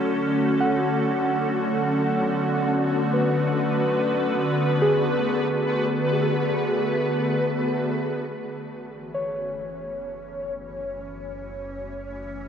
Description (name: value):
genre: ambient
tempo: 71 BPM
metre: 4/4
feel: straight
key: F# minor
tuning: A4 = 441 Hz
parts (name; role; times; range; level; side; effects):
- evolving wavetable pad; sustained chords; 0.0-12.5 s; D3 to C#5; -24 LUFS; equal; ensemble chorus, built-in reverb
- muted felt-like synth keys; arpeggios; 0.0-12.5 s; G#4 to F#5; -28 LUFS; equal; chorus, ping-pong delay
- analog drone; drone; 0.0-8.4 s; F#3 to C#4; -31 LUFS; right 1 dB; chorus
- round analog bass; bass; 8.3-12.5 s; F#1; -44 LUFS; equal; tube saturation
room: wet huge ambient reverb, RT60 7.9 s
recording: worn, warbling old tape, cassette tape, warbly pitch drift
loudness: -21 LUFS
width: side -8 dB against mid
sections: 0.0-8.3 A section; 8.3-12.5 B section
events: fade-in on ambient pad 8.3-12.5; fade-in on analog synth bass 8.3-12.5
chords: 0.0 Dmaj7; 1.5 Bm7; 8.3 F#m7